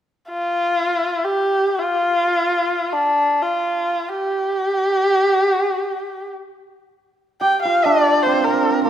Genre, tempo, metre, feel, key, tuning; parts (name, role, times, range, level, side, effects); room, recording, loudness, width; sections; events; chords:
chinese traditional, Chinese chamber ensemble; free time; G yu mode; A4 = 439 Hz
dark erhu; melody; 0.3-8.9 s; D4 to G5; -17 LUFS; equal
hammered dulcimer; second line; 7.4-8.9 s; Bb3 to G4; -18 LUFS; right 3 dB
moderate recital hall reverb, RT60 1.8 s; -16 LUFS; side -10 dB against mid
0.0-7.4 A section; 7.4-8.9 B section